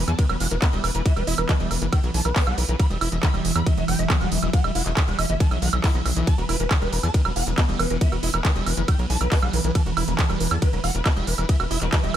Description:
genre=psychedelic trance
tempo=138 BPM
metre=4/4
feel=straight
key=E harmonic minor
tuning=A4 = 440 Hz
part: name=swarming rave lead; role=melody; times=0.0-12.2 s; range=B4 to B5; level=-30 LUFS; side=equal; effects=chorus, phaser, sidechain pumping, tape echo
part: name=evolving wavetable pad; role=sustained chords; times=0.0-12.2 s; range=E3 to E4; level=-30 LUFS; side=right 3 dB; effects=phaser, built-in reverb, sidechain pumping
part: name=overdriven acid bass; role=riff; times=0.0-12.2 s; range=D#3 to F#4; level=-31 LUFS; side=equal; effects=auto-pan, sidechain pumping, dub echo
part: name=tight sequencer bass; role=bass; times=0.0-12.2 s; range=E1 to E2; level=-25 LUFS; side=equal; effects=tube saturation
part: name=techno drum kit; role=drums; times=0.1-12.2 s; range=handclaps, hi-hat, ride cymbal, woodblock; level=-27 LUFS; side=right 3 dB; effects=none
part: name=electronic kick drum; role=drums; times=0.2-12.0 s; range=none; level=-20 LUFS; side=equal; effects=none
room=little or no reverb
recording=none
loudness=-19 LUFS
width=side -11 dB against mid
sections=0.0-12.2 A section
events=none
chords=0.0 E5

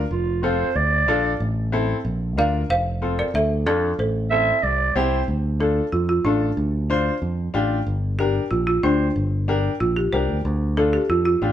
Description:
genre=latin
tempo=186 BPM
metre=4/4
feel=straight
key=D minor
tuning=A4 = 440 Hz
part: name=fingered electric bass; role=bass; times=0.0-11.5 s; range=F1 to F2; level=-23 LUFS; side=equal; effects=none
part: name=growling clarinet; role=second line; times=0.1-1.4, 4.3-5.3 s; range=F4 to E5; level=-21 LUFS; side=right 4 dB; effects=none
part: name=clear upright piano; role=accompaniment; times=0.4-11.5 s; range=C4 to C5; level=-25 LUFS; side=left 4 dB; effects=none
part: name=folk marimba with medium hard mallets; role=melody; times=2.4-11.5 s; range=D4 to F5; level=-22 LUFS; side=right 1 dB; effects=none
room=moderate large studio reverb, RT60 1.0 s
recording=band playing live in one room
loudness=-19 LUFS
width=side -11 dB against mid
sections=0.0-5.3 A section; 5.3-11.5 B section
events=marimba solo 5.3-11.5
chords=0.1 F; 0.8 Dm; 1.4 Am; 2.0 Bb; 2.7 F; 3.3 Dm; 4.0 Am; 5.3 Dm; 7.9 Gm; 10.4 Dm

